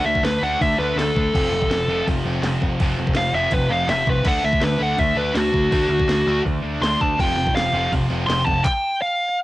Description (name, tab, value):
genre	punk rock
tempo	164 BPM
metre	4/4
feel	straight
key	unclear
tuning	A4 = 440 Hz
part	high-gain lead guitar	melody	0.0-9.4 s	F#4 to C6	-20 LUFS	equal	distortion
part	cranked stack guitar	riff	0.0-8.6 s	F2 to D4	-29 LUFS	right 5 dB	overdrive, cassette tape
part	sludgy distorted guitar	riff	0.0-8.6 s	F2 to D4	-27 LUFS	left 4 dB	overdrive, cassette tape
part	tight distorted guitar	riff	0.0-8.7 s	F2 to D4	-28 LUFS	equal	distortion, cassette tape
part	growling picked electric bass	bass	0.0-8.6 s	F1 to D2	-26 LUFS	equal	overdrive
part	garage drum kit	drums	0.2-8.7 s	crash cymbal, handclaps, hi-hat, kick drum, snare drum	-24 LUFS	equal	cassette tape
room	little or no reverb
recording	home recording on cassette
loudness	-18 LUFS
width	side -17 dB against mid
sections	0.0-9.4 A section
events	lead electric guitar solo 0.0-9.4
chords	0.0 D5; 1.3 F; 4.3 D; 7.2 F5